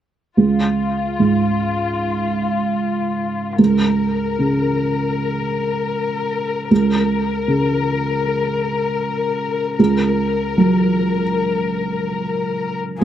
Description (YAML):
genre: neoclassical piano and strings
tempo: 76 BPM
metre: 4/4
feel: rubato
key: unclear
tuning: A4 = 440 Hz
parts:
  - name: muted chamber violin section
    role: melody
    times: 0.4-13.0 s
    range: F4 to Bb4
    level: -22 LUFS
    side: left 5 dB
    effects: slapback echo
  - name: felt-muted upright piano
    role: accompaniment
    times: 0.4-13.0 s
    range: Db2 to Gb3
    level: -18 LUFS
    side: right 2 dB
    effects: slapback echo
room: light reverb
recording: recorded outdoors, with no room sound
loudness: -16 LUFS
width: side -10 dB against mid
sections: 0.4-13.0 A section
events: none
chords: 0.4 Db; 3.6 Bbm/Db; 6.7 Gb/Db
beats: | 0.38 1.19 1.99 2.79 | 3.59 4.38 5.16 5.94 | 6.70 7.47 8.24 9.01 | 9.79 10.58 11.38 12.18 | 13.02